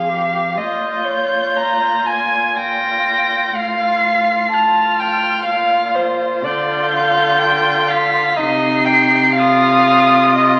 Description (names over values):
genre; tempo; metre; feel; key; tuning
classical, slow romantic movement for string quartet; 61 BPM; 3/4; rubato; unclear; A4 = 439 Hz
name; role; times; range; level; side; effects
muted violin; melody; 0.0-10.6 s; Eb6 to C7; -20 LUFS; equal; none
muted violin; second line; 0.0-10.6 s; C5 to Bb5; -19 LUFS; equal; none
muted viola; accompaniment; 0.0-10.6 s; Eb4 to Ab4; -23 LUFS; equal; none
muted cello; bass; 0.0-10.6 s; F2 to D3; -25 LUFS; equal; none
room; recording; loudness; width
wet recital hall reverb, RT60 1.8 s; very old 78 rpm record, vinyl crackle; -16 LUFS; mono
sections
0.0-10.6 A section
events
none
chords
0.0 Fm; 0.6 Bb5; 3.6 F/A; 5.5 Bb5; 6.4 G5/D; 8.4 Cm; 9.4 F5/C